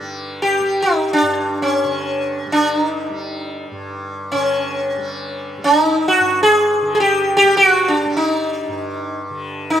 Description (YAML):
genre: indian classical, Hindustani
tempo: free time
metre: none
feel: none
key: G raga todi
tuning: A4 = 439 Hz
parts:
  - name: tanpura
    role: drone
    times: 0.0-9.8 s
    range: G2 to G3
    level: -28 LUFS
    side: equal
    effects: none
  - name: sitar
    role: melody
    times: 0.4-9.8 s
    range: C#4 to Ab4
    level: -15 LUFS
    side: equal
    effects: none
room: light reverb, small room ambience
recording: rough home demo mix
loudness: -15 LUFS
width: side -10 dB against mid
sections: 0.0-9.8 A section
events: none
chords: none